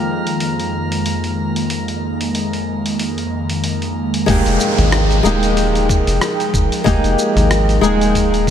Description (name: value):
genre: sunset chillout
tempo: 93 BPM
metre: 4/4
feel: swing 57% on 16ths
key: F minor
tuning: A4 = 440 Hz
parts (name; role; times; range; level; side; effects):
- flamenco guitar; accompaniment; 0.0-8.5 s; F2 to Ab4; -19 LUFS; left 1 dB; auto-pan, ping-pong delay
- airy breathy pad; sustained chords; 0.0-8.5 s; F2 to G5; -21 LUFS; equal; chorus, phaser
- drifting glass-harmonics texture; texture; 0.0-4.3 s; Bb4 to Bb5; -29 LUFS; left 1 dB; chorus, built-in reverb
- dusty soul sampler-style drum kit; drums; 0.3-8.5 s; hi-hat, rim click, shaker, toms; -24 LUFS; equal; studio reverb
- round analog bass; bass; 4.3-8.5 s; Eb1 to Ab1; -17 LUFS; equal; none
- electronic kick drum; drums; 4.3-8.5 s; none; -19 LUFS; equal; studio reverb
- downlifter; sound effects; 4.3-8.5 s; none; -25 LUFS; equal; none
room: light reverb, digital ambience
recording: none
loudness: -14 LUFS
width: side -9 dB against mid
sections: 0.0-4.3 A section; 4.3-8.5 B section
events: filter sweep on analog synth pad 0.0-4.3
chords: 0.0 Fm11